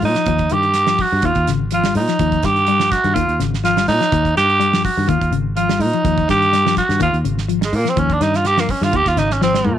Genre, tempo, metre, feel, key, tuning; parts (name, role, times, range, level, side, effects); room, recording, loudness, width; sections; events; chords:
afrobeat; 125 BPM; 4/4; swing 54% on 16ths; Eb mixolydian; A4 = 441 Hz
raspy tenor saxophone; melody; 0.0-9.8 s; Ab3 to G4; -17 LUFS; right 2 dB
clean electric guitar; arpeggios; 0.0-9.7 s; Db3 to G3; -22 LUFS; left 13 dB; tremolo, slapback echo
fingered electric bass; bass; 0.0-9.8 s; Ab1 to Bb2; -20 LUFS; equal
damped 70s drum kit; drums; 0.0-9.8 s; hi-hat, kick drum, snare drum, toms; -24 LUFS; right 4 dB
light reverb, small room ambience; 1960s-style stereo; -14 LUFS; side -10 dB against mid
0.0-9.8 A section
tenor saxophone solo 0.0-9.8; drum fill 9.4-9.8
0.3 Ebadd9; 1.2 Db; 2.2 Ebadd9; 3.2 Db; 4.1 Ebadd9; 5.1 Db; 6.1 Ebadd9; 7.0 Db; 8.0 Ebadd9; 8.9 Db5